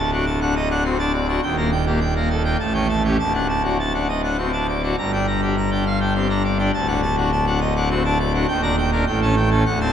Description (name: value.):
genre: classical, organ toccata.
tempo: 102 BPM.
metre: 3/4.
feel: straight.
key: unclear.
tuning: A4 = 437 Hz.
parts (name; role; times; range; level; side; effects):
pipe organ, full organ; solo; 0.0-9.9 s; D1 to Bb5; -18 LUFS; equal; none.
room: wet cathedral reverb, RT60 4.7 s.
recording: none.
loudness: -18 LUFS.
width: side -9 dB against mid.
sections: 0.0-9.9 A section.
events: none.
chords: 0.0 D; 1.4 Eb; 2.6 A7; 3.2 D; 5.0 Gm; 6.7 D; 8.5 Ebmaj7; 9.1 A7.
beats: 0.27 0.85 | 1.43 2.01 2.60 | 3.19 3.79 4.38 | 4.98 5.57 6.16 | 6.74 7.33 7.91 | 8.49 9.07 9.66.